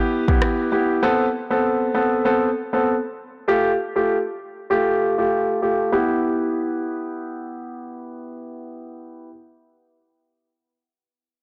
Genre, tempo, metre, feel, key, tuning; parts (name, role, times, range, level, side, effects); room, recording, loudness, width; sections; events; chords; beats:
dancehall; 98 BPM; 4/4; swing 56% on 16ths; E phrygian; A4 = 439 Hz
warm grand piano; accompaniment; 0.0-9.3 s; A3 to A4; -22 LUFS; equal; low-pass filter
afro-pop drum kit; drums; 0.3-0.6 s; kick drum, rim click; -23 LUFS; equal
moderate lush hall reverb, RT60 2.5 s; blown-out, overdriven recording, overdrive; -21 LUFS; mono
0.0-5.9 A section; 5.9-8.4 B section
filter sweep on grand piano 0.0-5.9
0.0 Em; 1.0 Amadd9; 3.5 Fadd9/A; 5.9 Em
0.42 | 1.03 1.64 2.25 2.87 | 3.48 4.09 4.70 5.31 | 5.93 6.54 7.15 7.76